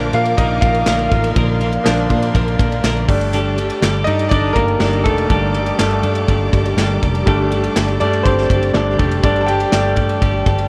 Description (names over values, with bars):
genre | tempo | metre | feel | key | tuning
piano-driven pop | 122 BPM | 4/4 | straight | G minor | A4 = 439 Hz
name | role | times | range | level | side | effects
bright upright piano | accompaniment | 0.0-10.7 s | F3 to A5 | -21 LUFS | equal | none
warm studio string section | sustained chords | 0.0-10.7 s | G4 to D6 | -28 LUFS | equal | none
twelve-string electric guitar | riff | 0.0-10.7 s | G2 to Bb4 | -25 LUFS | equal | none
vintage muted fingered electric bass | bass | 0.0-10.7 s | F1 to Bb2 | -22 LUFS | equal | transformer saturation
modern studio drum kit | drums | 0.1-10.7 s | handclaps, hi-hat, kick drum, ride cymbal, snare drum | -22 LUFS | equal | none
room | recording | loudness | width
light reverb, small room ambience | worn, warbling old tape, cassette tape, warbly pitch drift | -16 LUFS | mono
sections
0.0-10.7 A section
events
upright piano solo 0.0-10.7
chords
0.0 Bb; 3.1 Gsus2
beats
0.38 0.87 | 1.36 1.85 2.35 2.84 | 3.33 3.83 4.32 4.81 | 5.30 5.79 6.29 6.78 | 7.27 7.76 8.25 8.75 | 9.24 9.73 10.22